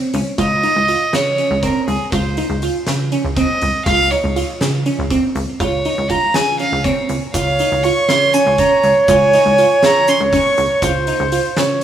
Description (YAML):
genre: progressive instrumental, band music in an uneven meter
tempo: 241 BPM (eighths)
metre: 7/8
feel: straight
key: Db major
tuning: A4 = 441 Hz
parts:
  - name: glassy wavetable pluck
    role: arpeggios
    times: 0.0-11.7 s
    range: C4 to F4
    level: -22 LUFS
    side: right 2 dB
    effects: chorus, tape echo
  - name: plucky analog bass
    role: bass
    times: 0.1-11.8 s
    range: Db2 to Db3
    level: -20 LUFS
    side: equal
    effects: none
  - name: oversized low-tuned drum kit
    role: drums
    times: 0.1-11.8 s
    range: hi-hat, kick drum, snare drum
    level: -24 LUFS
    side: equal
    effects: none
  - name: rich violin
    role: melody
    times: 0.4-10.8 s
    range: Ab4 to Db6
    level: -18 LUFS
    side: equal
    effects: tape echo
  - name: mellow flugelhorn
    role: second line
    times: 7.3-11.8 s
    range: C5 to Db5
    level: -13 LUFS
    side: right 2 dB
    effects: none
  - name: egg shaker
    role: percussion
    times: 7.3-11.7 s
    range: none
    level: -30 LUFS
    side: right 2 dB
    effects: none
room: light reverb, small room ambience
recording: rough home demo mix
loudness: -13 LUFS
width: side -10 dB against mid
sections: 0.4-11.8 A section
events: violin solo 0.4-11.8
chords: 0.4 Dbmaj7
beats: 0.14 | 0.39 0.63 0.88 1.13 1.38 1.63 1.88 | 2.12 2.37 2.62 2.87 3.12 3.37 3.62 | 3.86 4.11 4.36 4.61 4.86 5.11 5.36 | 5.60 5.85 6.10 6.35 6.60 6.85 7.10 | 7.34 7.59 7.84 8.09 8.34 8.59 8.84 | 9.09 9.33 9.58 9.83 10.08 10.33 10.58 | 10.83 11.08 11.32 11.57 11.82